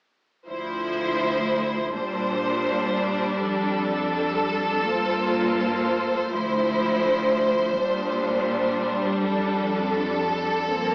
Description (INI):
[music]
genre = trip hop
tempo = free time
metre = none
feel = none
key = D minor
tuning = A4 = 440 Hz
[part]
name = clear symphonic string section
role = sustained chords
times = 0.5-10.9 s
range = D2 to C5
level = -24 LUFS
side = equal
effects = none
[sound]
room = moderate spring reverb, RT60 1.3 s, small room ambience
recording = AM radio sound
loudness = -24 LUFS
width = mono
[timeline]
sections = 0.5-10.9 A section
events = none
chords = 0.5 Dm9; 1.9 Bb69; 3.4 F69; 4.9 Gm11; 6.3 Dm9; 7.8 Bb69; 9.3 F69